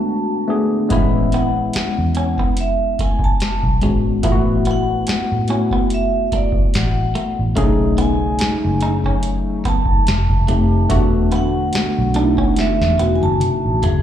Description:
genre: R&B, neo-soul.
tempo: 72 BPM.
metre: 4/4.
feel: swing 55% on 16ths.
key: A major.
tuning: A4 = 442 Hz.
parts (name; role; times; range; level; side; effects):
vibraphone with medium hard mallets; melody; 0.0-14.0 s; F#4 to A5; -23 LUFS; right 1 dB; slapback echo, tape echo.
tine electric piano; accompaniment; 0.0-14.0 s; G#3 to G#4; -20 LUFS; left 2 dB; overdrive, phaser, slapback echo.
hollow soft pad; sustained chords; 0.0-0.9, 7.6-14.0 s; C#3 to G4; -29 LUFS; left 1 dB; chorus.
clean electric guitar; second line; 0.9-14.0 s; G#3 to D#4; -27 LUFS; right 5 dB; spring reverb, slapback echo.
vintage muted fingered electric bass; bass; 0.9-14.0 s; E1 to A2; -19 LUFS; equal; none.
booming analog drum machine; drums; 0.9-14.0 s; hi-hat, kick drum, snare drum, toms; -20 LUFS; equal; none.
room: little or no reverb.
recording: live gig heard through the venue's PA, club reverb.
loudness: -15 LUFS.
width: side -10 dB against mid.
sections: 0.9-14.0 A section.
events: break 0.0-0.9; drum fill 12.6-14.0.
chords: 0.0 E9sus4 (rootless); 0.9 Amaj9; 4.2 Asus2; 7.6 B13; 10.1 F9; 10.9 E9sus4.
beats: 0.07 | 0.90 1.73 2.57 3.40 | 4.23 5.07 5.90 6.73 | 7.57 8.40 9.23 10.07 | 10.90 11.73 12.57 13.40.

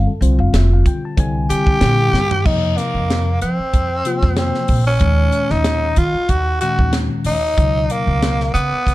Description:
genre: electric jazz fusion.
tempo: 94 BPM.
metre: 4/4.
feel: swing 54% on 16ths.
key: F phrygian.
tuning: A4 = 442 Hz.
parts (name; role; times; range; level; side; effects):
mellow tine electric piano; accompaniment; 0.0-8.5 s; Bb2 to A5; -22 LUFS; left 3 dB; phaser.
upright bass; bass; 0.0-8.9 s; F1 to F3; -18 LUFS; equal; none.
crisp fusion drum kit; drums; 0.2-8.9 s; crash cymbal, hi-hat, kick drum, snare drum, toms; -20 LUFS; equal; none.
growling tenor saxophone; melody; 1.5-8.9 s; Bb3 to G4; -19 LUFS; equal; none.
room: light reverb.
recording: dark, warm production.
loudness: -14 LUFS.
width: side -17 dB against mid.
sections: 0.0-2.5 A section; 2.5-8.9 B section.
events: drum fill 2.1-2.5.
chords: 0.0 G7sus4; 1.2 C7b13; 2.5 F5; 5.0 Eb5; 7.6 Dbsus2.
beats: 0.54 1.17 1.81 | 2.45 3.09 3.73 4.37 | 5.01 5.65 6.29 6.94 | 7.58 8.22 8.86.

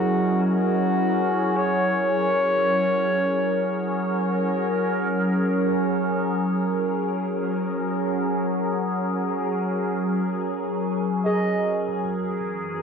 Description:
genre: ambient.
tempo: free time.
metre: none.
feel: none.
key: F# mixolydian.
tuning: A4 = 440 Hz.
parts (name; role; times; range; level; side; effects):
warm flugelhorn; melody; 0.0-4.4, 11.3-11.8 s; F#4 to D#5; -26 LUFS; left 2 dB; cassette tape, tape echo.
evolving wavetable pad; sustained chords; 0.0-12.8 s; F#2 to D#5; -23 LUFS; equal; phaser, built-in reverb, cassette tape.
overdriven tine electric piano; arpeggios; 0.0-12.8 s; E4 to G#4; -32 LUFS; right 1 dB; cassette tape, tape echo.
room: wet spring reverb, RT60 1.5 s, small room ambience.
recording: home recording on cassette.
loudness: -21 LUFS.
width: side -6 dB against mid.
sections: 0.0-12.8 A section.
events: filter sweep on ambient pad 0.0-12.8.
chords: 0.0 F#7; 11.9 E/F#.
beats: free time.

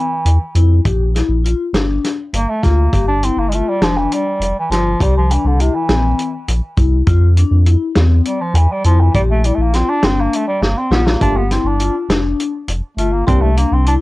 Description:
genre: progressive instrumental, band music in an uneven meter.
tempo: 203 BPM (eighths).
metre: 7/8.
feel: straight.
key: G dorian.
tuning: A4 = 435 Hz.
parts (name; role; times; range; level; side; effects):
bright bass clarinet; melody; 0.0-13.9 s; C3 to D4; -19 LUFS; right 1 dB; tape echo.
vibraphone with soft mallets; arpeggios; 0.0-14.0 s; C4 to G4; -20 LUFS; left 6 dB; cassette tape.
round analog bass; bass; 0.3-14.0 s; F1 to F2; -14 LUFS; equal; none.
warm soul drum kit; drums; 0.3-14.0 s; hi-hat, kick drum, snare drum; -19 LUFS; equal; cassette tape.
barky tine electric piano; accompaniment; 11.2-13.5 s; E3 to F4; -23 LUFS; right 7 dB; medium stereo tremolo, cassette tape.
room: little or no reverb.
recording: home recording on cassette.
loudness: -13 LUFS.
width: side -19 dB against mid.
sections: 0.0-14.0 A section.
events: bass clarinet solo 0.0-14.0; drum fill 10.6-11.2.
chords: 0.0 F5; 0.9 Bb6; 2.9 G5; 5.0 C7; 7.1 F5; 9.1 Bb6; 11.2 G7(no3); 13.3 C7.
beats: 0.26 0.56 | 0.85 1.15 1.45 1.74 2.04 2.34 2.63 | 2.93 3.23 3.52 3.82 4.11 4.41 4.71 | 5.00 5.30 5.59 5.89 6.19 6.48 6.78 | 7.07 7.37 7.67 7.96 8.26 8.55 8.85 | 9.15 9.44 9.74 10.03 10.33 10.62 10.92 | 11.21 11.51 11.81 12.10 12.40 12.69 12.99 | 13.28 13.58 13.88.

